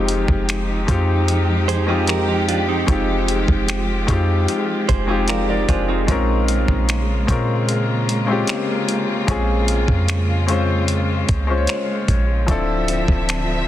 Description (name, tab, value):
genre	contemporary R&B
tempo	75 BPM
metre	4/4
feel	straight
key	unclear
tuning	A4 = 440 Hz
part	clear grand piano	accompaniment	0.0-13.7 s	F3 to F5	-21 LUFS	left 3 dB	none
part	rich studio string section	sustained chords	0.0-13.7 s	Db3 to E5	-26 LUFS	right 1 dB	none
part	clean 808-style bass	bass	0.0-13.7 s	D1 to Bb2	-21 LUFS	equal	none
part	dusty soul sampler-style drum kit	drums	0.1-13.5 s	finger snaps, hi-hat, kick drum	-22 LUFS	equal	soft clipping on snare
part	direct-recorded clean electric guitar	arpeggios	1.7-7.0 s	C4 to C5	-25 LUFS	right 12 dB	tape echo
room	digital ambience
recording	dense, heavily limited modern master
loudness	-16 LUFS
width	side -12 dB against mid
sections	0.0-13.7 A section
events	none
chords	0.0 Fm9; 6.1 Bbm9; 12.5 Dm9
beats	0.48 1.28 2.08 | 2.88 3.68 4.48 5.28 | 6.08 6.88 7.68 8.48 | 9.28 10.08 10.88 11.68 | 12.48 13.28